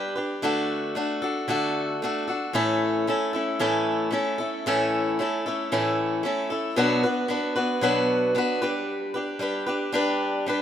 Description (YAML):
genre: rock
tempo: 114 BPM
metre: 4/4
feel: straight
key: unclear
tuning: A4 = 440 Hz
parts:
  - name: picked swing-style acoustic guitar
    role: solo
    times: 0.0-10.6 s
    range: A2 to B4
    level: -23 LUFS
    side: equal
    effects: none
room: moderate plate reverb, RT60 3.3 s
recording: rough home demo mix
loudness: -23 LUFS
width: side -9 dB against mid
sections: 0.0-6.8 A section; 6.8-10.6 B section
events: none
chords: 0.4 D; 2.5 A; 6.8 Bm; 8.6 G